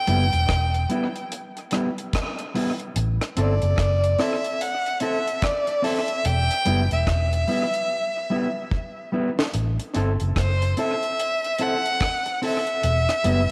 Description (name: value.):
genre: roots reggae.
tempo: 73 BPM.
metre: 4/4.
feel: swing 62% on 16ths.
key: A dorian.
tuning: A4 = 440 Hz.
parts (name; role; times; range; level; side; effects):
clear violin; melody; 0.0-13.5 s; C5 to G5; -27 LUFS; equal; dub echo.
mellow electric guitar; accompaniment; 0.1-13.4 s; G3 to A4; -30 LUFS; equal; dub echo.
vintage muted fingered electric bass; bass; 0.1-13.5 s; E1 to A1; -24 LUFS; equal; none.
deep reggae drum kit; drums; 0.1-13.5 s; hi-hat, kick drum, rim click, snare drum; -30 LUFS; equal; tape echo.
room: moderate echo chamber reverb, RT60 2.0 s, studio ambience.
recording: none.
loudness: -23 LUFS.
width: mono.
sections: 0.0-9.5 A section; 9.5-13.5 A section.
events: drum fill 7.9-9.5.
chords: 0.0 Em; 3.0 Am; 6.2 Em; 9.5 Am; 12.8 Em.